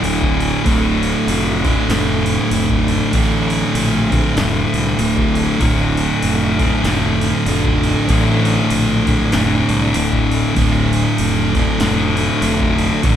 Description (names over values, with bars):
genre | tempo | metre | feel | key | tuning
stoner and doom metal | 97 BPM | 4/4 | swing 59% on 8ths | D minor | A4 = 442 Hz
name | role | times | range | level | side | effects
tonewheel organ | sustained chords | 0.0-13.2 s | D3 to E4 | -29 LUFS | right 1 dB | none
thick fuzz guitar | riff | 0.0-13.2 s | D2 to D3 | -18 LUFS | left 6 dB | distortion
thick fuzz guitar | riff | 0.0-13.2 s | D2 to D3 | -19 LUFS | right 5 dB | distortion
fuzz fingered electric bass | bass | 0.0-13.2 s | D1 to C2 | -21 LUFS | equal | overdrive, tube saturation
electro analog drum machine | drums | 0.0-13.2 s | crash cymbal, kick drum, snare drum | -22 LUFS | equal | none
room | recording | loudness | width
light reverb | band playing live in one room | -14 LUFS | side -9 dB against mid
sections
0.0-13.2 A section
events
none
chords
0.0 Dm